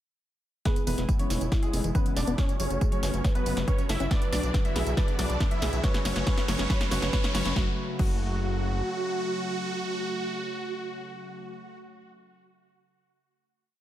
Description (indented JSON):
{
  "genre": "uplifting trance",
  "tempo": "139 BPM",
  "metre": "4/4",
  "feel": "straight",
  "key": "F# minor",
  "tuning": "A4 = 440 Hz",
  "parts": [
    { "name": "supersaw chords", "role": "melody", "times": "0.7-11.8 s", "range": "G#3 to E5", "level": "-34 LUFS", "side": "right 2 dB", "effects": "phaser, sidechain pumping, low-pass filter, tape echo" },
    { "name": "clear baby grand piano", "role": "second line", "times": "0.7-12.0 s", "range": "F#4 to E5", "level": "-40 LUFS", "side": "equal", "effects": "sidechain pumping, tape echo" },
    { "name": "warm velvety synth lead", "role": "second line", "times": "0.7-11.8 s", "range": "C#4 to B4", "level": "-37 LUFS", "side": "equal", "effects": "chorus, dub echo" },
    { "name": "lush unison pad", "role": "sustained chords", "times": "0.7-11.5 s", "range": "C#3 to F#4", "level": "-37 LUFS", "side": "left 1 dB", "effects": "chorus, sidechain pumping" },
    { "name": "wide unison pluck", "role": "arpeggios", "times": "0.7-8.1 s", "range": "E3 to C#5", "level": "-37 LUFS", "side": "left 3 dB", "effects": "none" },
    { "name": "big-room dance drum kit", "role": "drums", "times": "0.7-8.1 s", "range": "crash cymbal, hi-hat, snare drum, tambourine", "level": "-34 LUFS", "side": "equal", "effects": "sidechain pumping on hats, sidechain pumping on perc, sidechain pumping on cymbals" },
    { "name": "electronic kick drum", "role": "drums", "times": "0.7-8.1 s", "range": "none", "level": "-26 LUFS", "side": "equal", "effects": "none" },
    { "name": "riser", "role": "sound effects", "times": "3.4-7.6 s", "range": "none", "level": "-41 LUFS", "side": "right 1 dB", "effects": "none" },
    { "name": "gritty driven synth bass", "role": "bass", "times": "0.9-8.8 s", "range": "E1 to B1", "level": "-30 LUFS", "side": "equal", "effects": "sidechain pumping" }
  ],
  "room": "light reverb, digital ambience",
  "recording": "none",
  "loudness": "-25 LUFS",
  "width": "side -12 dB against mid",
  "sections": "0.7-7.6 build; 7.6-11.0 final chord",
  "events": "build-up 0.7-7.6; drum fill 0.7-7.6; filter sweep on supersaw synth 0.7-7.6",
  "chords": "0.7 E6; 2.4 F#m; 4.1 Bm; 5.8 F#m"
}